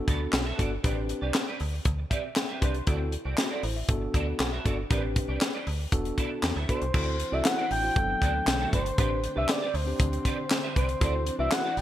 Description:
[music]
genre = early-eighties boogie funk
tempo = 118 BPM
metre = 4/4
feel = straight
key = A dorian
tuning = A4 = 440 Hz
[part]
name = mellow tine electric piano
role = accompaniment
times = 0.0-11.7 s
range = F#3 to C6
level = -34 LUFS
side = left 1 dB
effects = fast stereo tremolo
[part]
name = clean electric guitar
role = riff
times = 0.1-11.8 s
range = B3 to E5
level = -36 LUFS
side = right 4 dB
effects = ensemble chorus
[part]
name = metallic FM bass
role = bass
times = 0.1-11.8 s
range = E1 to E2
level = -30 LUFS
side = equal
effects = none
[part]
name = tight funk drum kit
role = drums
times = 0.1-11.8 s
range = crash cymbal, handclaps, hi-hat, kick drum, snare drum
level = -28 LUFS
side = equal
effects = gated reverb
[part]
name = expressive synth lead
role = melody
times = 6.7-11.8 s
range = C5 to G5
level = -30 LUFS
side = equal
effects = chorus
[part]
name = soft string machine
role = sustained chords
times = 6.9-11.8 s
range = D3 to G5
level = -38 LUFS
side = equal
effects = ensemble chorus
[sound]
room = light reverb, small room ambience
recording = bright 1980s-style digital production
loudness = -25 LUFS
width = side -12 dB against mid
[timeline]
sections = 0.0-6.9 A section; 6.9-11.8 B section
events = tine electric piano fill 1.9-2.9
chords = 0.0 Gmaj9; 0.8 Am11; 2.9 D9; 3.9 Gmaj9; 4.9 Am11; 5.9 E7sus4; 6.9 D9; 8.0 Gmaj9; 9.0 Am11; 11.0 D9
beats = 0.33 | 0.84 1.35 1.86 2.37 | 2.88 3.38 3.89 4.40 | 4.91 5.42 5.93 6.43 | 6.94 7.45 7.96 8.47 | 8.98 9.48 9.99 10.50 | 11.01 11.52

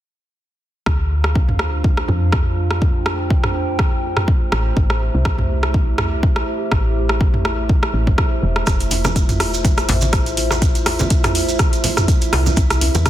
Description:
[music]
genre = afro house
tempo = 123 BPM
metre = 4/4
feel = swing 55% on 16ths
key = D minor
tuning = A4 = 440 Hz
[part]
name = dark analog pad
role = sustained chords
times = 0.9-13.1 s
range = A3 to G5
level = -25 LUFS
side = right 2 dB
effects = wide subtle chorus, sidechain pumping
[part]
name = woody FM bass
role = bass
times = 0.9-13.1 s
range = E1 to F2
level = -21 LUFS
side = equal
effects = sidechain pumping
[part]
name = deep house drum kit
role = drums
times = 0.9-13.1 s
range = hi-hat, rim click, toms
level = -21 LUFS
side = equal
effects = soft clipping on snare, small room ambience
[part]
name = electronic kick drum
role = drums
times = 0.9-13.1 s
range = none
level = -17 LUFS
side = equal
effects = small room ambience
[part]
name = maracas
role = percussion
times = 8.7-13.1 s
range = none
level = -28 LUFS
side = right 5 dB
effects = none
[part]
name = congas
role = percussion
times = 8.9-13.0 s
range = none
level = -25 LUFS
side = right 2 dB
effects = none
[part]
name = djembe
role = percussion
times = 8.9-13.0 s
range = none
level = -28 LUFS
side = left 3 dB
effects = none
[sound]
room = studio reverb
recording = dense, heavily limited modern master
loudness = -15 LUFS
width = side -12 dB against mid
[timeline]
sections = 0.9-13.1 A section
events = none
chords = 0.9 Dm7; 4.8 Am7; 8.7 Fmaj7; 12.6 Cmaj7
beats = | 0.86 1.35 1.84 2.33 | 2.82 3.30 3.79 4.28 | 4.77 5.26 5.74 6.23 | 6.72 7.21 7.70 8.18 | 8.67 9.16 9.65 10.13 | 10.62 11.11 11.60 12.09 | 12.57 13.06

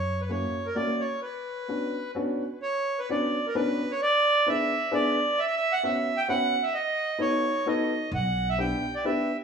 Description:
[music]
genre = musette waltz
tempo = 131 BPM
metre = 3/4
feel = swing 54% on 8ths, rubato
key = B harmonic minor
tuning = A4 = 440 Hz
[part]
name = accordion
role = melody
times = 0.0-9.4 s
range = A#4 to G5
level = -26 LUFS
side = right 2 dB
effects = tape echo
[part]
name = upright bass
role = bass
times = 0.0-0.4, 8.1-8.7 s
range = B1 to F#2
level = -30 LUFS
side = equal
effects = none
[part]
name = warm upright piano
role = accompaniment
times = 0.3-9.3 s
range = A#3 to B4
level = -28 LUFS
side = left 2 dB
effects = none
[sound]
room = wet studio reverb, RT60 0.5 s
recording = band playing live in one room, studio reverb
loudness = -24 LUFS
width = side -6 dB against mid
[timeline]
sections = 0.0-2.6 A section; 2.6-9.4 A section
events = break 1.2-2.6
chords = 0.0 F#7; 1.2 Bmadd9; 4.0 E7; 5.4 F#7sus4; 6.7 B7; 8.1 Em7/B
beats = 0.30 0.76 | 1.22 1.69 2.15 | 2.62 3.09 3.56 | 4.01 4.47 4.92 | 5.37 5.83 6.28 | 6.74 7.19 7.66 | 8.12 8.58 9.04

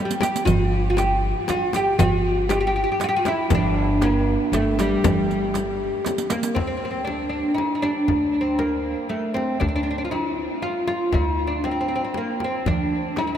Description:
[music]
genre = Arabic maqam ensemble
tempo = 118 BPM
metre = 3/4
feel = straight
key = G maqam rast, D maqam bayati from 6.6 s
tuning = A4 = 439 Hz
[part]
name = oud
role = melody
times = 0.0-13.4 s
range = G3 to G4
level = -22 LUFS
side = equal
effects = diffuse ambient delay
[part]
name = riq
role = percussion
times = 0.1-6.5 s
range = none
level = -34 LUFS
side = right 7 dB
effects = none
[part]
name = darbuka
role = percussion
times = 0.2-6.4, 12.7-13.3 s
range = none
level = -29 LUFS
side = right 6 dB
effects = none
[part]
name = frame drum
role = percussion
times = 0.2-13.3 s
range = none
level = -28 LUFS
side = left 4 dB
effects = none
[part]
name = upright bass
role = bass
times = 0.5-13.4 s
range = G1 to D2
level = -26 LUFS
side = equal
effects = none
[sound]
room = wet huge ambient reverb, RT60 8.3 s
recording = dreamy mix soaked in reverb, faint mains hum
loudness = -20 LUFS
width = side -9 dB against mid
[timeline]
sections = 0.0-6.6 A section; 6.6-13.4 B section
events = drum fill 0.0-0.5, 6.1-6.6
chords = none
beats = | 0.48 0.98 1.49 | 2.00 2.50 3.01 | 3.52 4.02 4.53 | 5.04 5.54 6.05 | 6.56 7.07 7.58 | 8.09 8.60 9.11 | 9.62 10.13 10.64 | 11.15 11.65 12.16 | 12.67 13.18

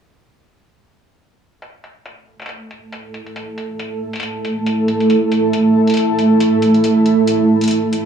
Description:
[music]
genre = deep dubstep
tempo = 138 BPM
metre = 4/4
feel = swing 56% on 16ths, half-time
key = unclear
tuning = A4 = 441 Hz
[part]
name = granular cloud pad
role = sustained chords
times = 3.6-8.1 s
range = A3 to A4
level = -14 LUFS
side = right 2 dB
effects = built-in reverb, vintage 12-bit sampler grit
[part]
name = electronic hi-hat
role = drums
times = 1.6-8.0 s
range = none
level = -29 LUFS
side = left 1 dB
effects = overdrive, low-pass filter on hats, low-pass filter on room
[sound]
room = moderate huge ambient reverb, RT60 8.0 s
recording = small room ambience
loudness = -13 LUFS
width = side -7 dB against mid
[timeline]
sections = 1.6-8.1 A section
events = filter sweep on drum 1.6-8.1; filter sweep on ambient pad 1.6-8.1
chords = 1.6 A5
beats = | 1.62 2.06 2.49 2.93 | 3.36 3.80 4.23 4.67 | 5.10 5.54 5.97 6.40 | 6.84 7.27 7.71

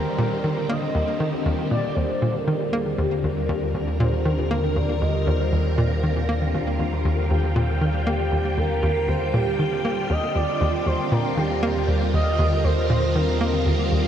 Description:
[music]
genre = ambient, sequencer-driven space music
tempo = 118 BPM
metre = 4/4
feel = straight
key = Eb major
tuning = A4 = 440 Hz
[part]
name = expressive synth lead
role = melody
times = 0.0-13.7 s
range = G4 to Eb5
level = -27 LUFS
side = right 1 dB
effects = lush chorus, tape echo
[part]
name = phased string machine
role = sustained chords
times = 0.0-14.1 s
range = Eb2 to G5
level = -26 LUFS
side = equal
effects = ensemble chorus, phaser
[part]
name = hollow square pluck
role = riff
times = 0.2-14.0 s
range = Eb2 to Bb3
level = -24 LUFS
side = equal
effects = chorus, tape echo
[part]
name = analog drone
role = bass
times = 2.9-14.1 s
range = Eb2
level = -26 LUFS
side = equal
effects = chorus
[sound]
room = wet huge ambient reverb, RT60 7.6 s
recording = dreamy mix soaked in reverb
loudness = -20 LUFS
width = side -9 dB against mid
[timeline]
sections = 0.0-2.0 A section; 2.0-14.1 B section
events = none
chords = 0.0 Eb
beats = 0.44 0.95 1.46 | 1.97 2.48 2.98 3.49 | 4.00 4.51 5.02 5.53 | 6.04 6.54 7.05 7.56 | 8.07 8.58 9.09 9.59 | 10.10 10.61 11.12 11.63 | 12.14 12.64 13.15 13.66

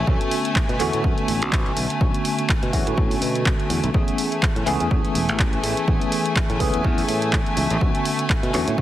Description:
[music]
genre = filtered disco house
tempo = 124 BPM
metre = 4/4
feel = swing 56% on 16ths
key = unclear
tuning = A4 = 440 Hz
[part]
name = tine electric piano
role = accompaniment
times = 0.0-8.8 s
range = D3 to G#4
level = -25 LUFS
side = equal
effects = medium stereo tremolo, phaser, sidechain pumping
[part]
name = clear studio violin section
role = sustained chords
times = 0.0-8.8 s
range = A3 to G#5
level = -27 LUFS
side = left 1 dB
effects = sidechain pumping
[part]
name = modern bright fingered electric bass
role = bass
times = 0.0-8.8 s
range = E1 to B2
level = -26 LUFS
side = equal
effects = sidechain pumping
[part]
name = electronic kick drum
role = drums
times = 0.1-8.8 s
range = none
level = -21 LUFS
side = equal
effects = none
[part]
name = punchy analog drum machine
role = drums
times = 0.2-8.8 s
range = handclaps, hi-hat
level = -27 LUFS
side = equal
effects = sidechain pumping on hats
[sound]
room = light reverb, digital ambience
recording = heavily compressed radio sound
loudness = -19 LUFS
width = side -13 dB against mid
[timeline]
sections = 0.0-8.8 A section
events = none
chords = 0.1 Bm7; 3.9 Amaj9; 7.8 Bm7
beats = | 0.07 0.56 1.04 1.52 | 2.01 2.49 2.98 3.46 | 3.94 4.43 4.91 5.39 | 5.88 6.36 6.85 7.33 | 7.81 8.30 8.78

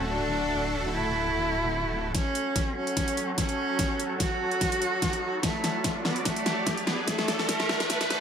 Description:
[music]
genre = heavy wobble dubstep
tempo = 146 BPM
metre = 4/4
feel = swing 53% on 16ths, half-time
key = F# minor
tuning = A4 = 440 Hz
[part]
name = supersaw pad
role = sustained chords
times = 0.0-8.2 s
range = F#3 to D5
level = -34 LUFS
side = right 1 dB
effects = sidechain pumping, low-pass filter
[part]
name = wobble bass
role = bass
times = 0.0-2.1 s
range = D1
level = -33 LUFS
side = equal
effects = chorus, overdrive
[part]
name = warm cello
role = melody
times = 0.1-8.2 s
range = A3 to F#4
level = -28 LUFS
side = right 1 dB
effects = tape echo
[part]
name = dubstep drum kit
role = drums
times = 2.1-8.2 s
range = hi-hat, snare drum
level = -29 LUFS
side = left 1 dB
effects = overdrive
[part]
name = electronic kick drum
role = drums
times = 2.1-8.0 s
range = none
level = -33 LUFS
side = equal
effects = overdrive
[part]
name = riser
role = sound effects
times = 4.3-8.2 s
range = none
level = -34 LUFS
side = equal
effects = none
[sound]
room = moderate digital room reverb, RT60 1.1 s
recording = high-pass filter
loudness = -25 LUFS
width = side -7 dB against mid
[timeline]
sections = 0.0-2.1 A section; 2.1-8.2 B section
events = build-up 2.1-8.2; drum fill 2.1-8.2; filter sweep on supersaw synth 2.1-8.2; riser 4.3-8.2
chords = 0.0 D; 2.1 F#m; 5.4 D/F#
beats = 0.09 | 0.50 0.91 1.32 1.73 | 2.15 2.56 2.97 3.38 | 3.79 4.20 4.61 5.02 | 5.43 5.84 6.25 6.67 | 7.08 7.49 7.90

